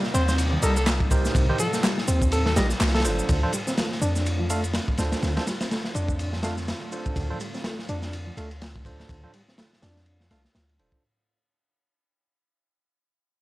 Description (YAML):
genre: breakbeat, breaks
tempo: 124 BPM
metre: 4/4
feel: swing 57% on 16ths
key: D phrygian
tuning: A4 = 440 Hz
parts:
  - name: phased analog pad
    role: sustained chords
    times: 0.0-11.0 s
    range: C3 to F4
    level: -37 LUFS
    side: left 1 dB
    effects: phaser, chorus, sidechain pumping
  - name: crunchy breakbeat drum kit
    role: drums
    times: 0.0-11.0 s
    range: kick drum, ride cymbal, snare drum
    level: -27 LUFS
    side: equal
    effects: none
  - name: hollow square pluck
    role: melody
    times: 0.1-3.3 s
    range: A4 to C5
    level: -31 LUFS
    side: equal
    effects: chorus, small speaker sound, cassette tape, tape echo
  - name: reed electric piano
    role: riff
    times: 0.1-10.4 s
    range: C3 to D4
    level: -31 LUFS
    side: equal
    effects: fast tremolo, vintage 12-bit sampler grit, low-pass filter, tape echo
  - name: warm 808-style bass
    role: bass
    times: 0.1-11.0 s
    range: D1 to F2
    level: -26 LUFS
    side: equal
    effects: none
  - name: electronic shaker and handclaps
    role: drums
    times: 0.1-11.0 s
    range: none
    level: -33 LUFS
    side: right 1 dB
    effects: low-pass filter on perc, low-pass filter on snare
  - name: overdriven tine electric piano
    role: stabs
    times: 0.6-11.0 s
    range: D4 to F5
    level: -33 LUFS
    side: right 2 dB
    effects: vintage 12-bit sampler grit, low-pass filter, tape echo
room: light reverb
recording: vinyl crackle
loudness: -22 LUFS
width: side -18 dB against mid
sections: 0.0-3.3 A section; 3.3-11.0 B section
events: drop 0.0-3.3; fade-out 3.3-11.0; filter sweep on 808-style bass 3.3-11.0; filter sweep on reed electric piano 3.3-11.0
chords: 0.0 Cm7; 3.3 Dm7